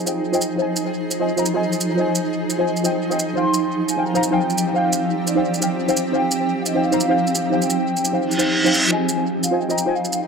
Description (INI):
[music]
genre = liquid drum and bass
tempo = 173 BPM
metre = 4/4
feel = swing 54% on 16ths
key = F minor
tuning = A4 = 445 Hz
[part]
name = hollow clarinet-like synth lead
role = melody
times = 0.0, 3.4-10.2 s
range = D5 to C6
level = -25 LUFS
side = equal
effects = chorus, tape echo
[part]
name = deep mellow chord stab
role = accompaniment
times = 0.0-9.9 s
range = Eb4 to Bb5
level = -22 LUFS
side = equal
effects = chorus, analog delay
[part]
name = shimmering ambient pad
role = sustained chords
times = 0.0-10.3 s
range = F3 to Ab4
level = -22 LUFS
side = right 1 dB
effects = chorus, built-in reverb
[part]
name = shaker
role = drums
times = 0.1-10.2 s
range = none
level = -26 LUFS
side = right 2 dB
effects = overdrive, analog delay
[part]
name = reverse cymbal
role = sound effects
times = 8.3-8.9 s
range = none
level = -19 LUFS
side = right 1 dB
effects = none
[sound]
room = wet spring reverb, RT60 2.0 s, digital ambience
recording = echo-heavy mix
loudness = -17 LUFS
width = side -5 dB against mid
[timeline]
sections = 0.0-10.3 A section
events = reverse cymbal 8.3-8.9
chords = 0.0 Fm7; 3.4 Eb69; 8.9 Fm7